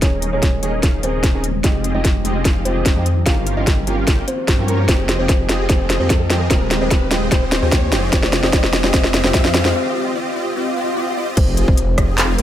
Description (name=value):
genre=future bass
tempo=148 BPM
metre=4/4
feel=half-time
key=F minor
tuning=A4 = 438 Hz
part: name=kalimba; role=melody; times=0.0-12.4 s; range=Bb3 to F5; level=-25 LUFS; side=left 2 dB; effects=sidechain pumping, low-pass filter, dub echo
part: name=bright grand piano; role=accompaniment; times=0.0-9.7 s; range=Eb3 to Bb4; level=-29 LUFS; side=right 3 dB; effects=sidechain pumping
part: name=ethereal airy pad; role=sustained chords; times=0.0-9.7 s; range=Db3 to G4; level=-30 LUFS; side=right 1 dB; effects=none
part: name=supersaw chords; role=riff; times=0.0-12.4 s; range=C4 to G5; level=-24 LUFS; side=equal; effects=analog chorus, sidechain pumping, low-pass filter
part: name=wide detuned saw bass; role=bass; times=0.0-12.4 s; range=Eb1 to G2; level=-21 LUFS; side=equal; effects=chorus, sidechain pumping
part: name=electronic kick drum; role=drums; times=0.0-12.1 s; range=none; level=-16 LUFS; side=equal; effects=none
part: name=trap drum kit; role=drums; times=0.0-12.4 s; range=crash cymbal, handclaps, hi-hat, rim click, snare drum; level=-19 LUFS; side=equal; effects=none
part: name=riser, swell and sub drop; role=sound effects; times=1.0-12.4 s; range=none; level=-28 LUFS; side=equal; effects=none
room=light reverb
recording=none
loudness=-14 LUFS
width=side -11 dB against mid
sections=0.0-11.4 A section; 11.4-12.4 B section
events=build-up 0.0-11.4; drum fill 0.0-9.8; riser 1.0-9.8; break 9.8-11.4; swell 10.7-11.4; drop 11.4-12.4; impact 11.4-12.4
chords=0.0 Eb7sus4; 1.6 Fm9; 3.3 Gm7b5; 4.9 Fm9; 6.5 Eb7sus4; 8.1 Fm9; 9.8 Cmadd11; 11.4 Fm9